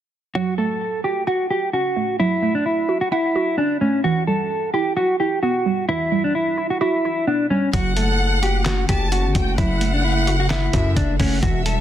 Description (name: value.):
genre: hip hop, trap.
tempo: 130 BPM.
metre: 4/4.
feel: half-time.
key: F# phrygian.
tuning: A4 = 440 Hz.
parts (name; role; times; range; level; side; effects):
mellow electric guitar; melody; 0.4-11.8 s; C#4 to A4; -21 LUFS; left 1 dB; digital delay.
hollow square pluck; accompaniment; 0.4-11.8 s; E3 to F#5; -24 LUFS; right 4 dB; chorus.
warm studio violin section; second line; 7.7-11.8 s; E5 to A5; -26 LUFS; left 1 dB; digital delay.
dark analog pad; sustained chords; 8.3-11.8 s; C#3 to A4; -30 LUFS; right 2 dB; chorus, phaser.
distorted 808-style bass; bass; 7.7-11.8 s; E1 to F#2; -21 LUFS; left 1 dB; distortion.
lo-fi sampler-style drum kit; drums; 7.7-11.8 s; handclaps, hi-hat, kick drum, snare drum; -22 LUFS; equal; none.
room: digital ambience.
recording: dense, heavily limited modern master.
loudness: -18 LUFS.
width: side -11 dB against mid.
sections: 0.3-7.7 A section; 7.7-11.8 B section.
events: none.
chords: 0.3 F#m; 4.0 Emadd9; 7.7 F#m.